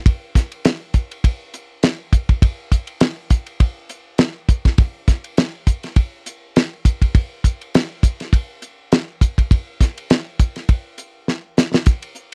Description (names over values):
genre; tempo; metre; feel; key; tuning
jazz; 102 BPM; 4/4; swing 56% on 16ths; none; none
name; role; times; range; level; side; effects
damped 70s drum kit; drums; 0.1-12.3 s; hi-hat, kick drum, ride cymbal, snare drum; -16 LUFS; equal; none
room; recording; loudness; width
light reverb; dry, close 1970s-style studio recording; -19 LUFS; mono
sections
0.0-11.9 A section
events
drum fill 11.3-11.9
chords
none